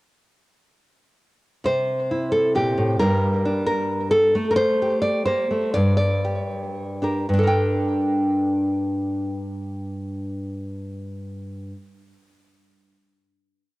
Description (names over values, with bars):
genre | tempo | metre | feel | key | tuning
folk, solo fingerstyle acoustic guitar | 110-133 BPM | 3/4 | straight | G dorian | A4 = 440 Hz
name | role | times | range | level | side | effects
nylon-string guitar | solo | 1.6-11.9 s | G2 to G5 | -20 LUFS | equal | cassette tape, tape echo
room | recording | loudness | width
light reverb, small room ambience | home recording on cassette | -20 LUFS | side -20 dB against mid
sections
1.6-7.3 A section; 7.3-10.5 final chord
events
slowing down 4.4-7.3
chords
1.6 C; 3.0 Gm; 4.4 Am7; 5.7 Gm; 7.3 Gmadd9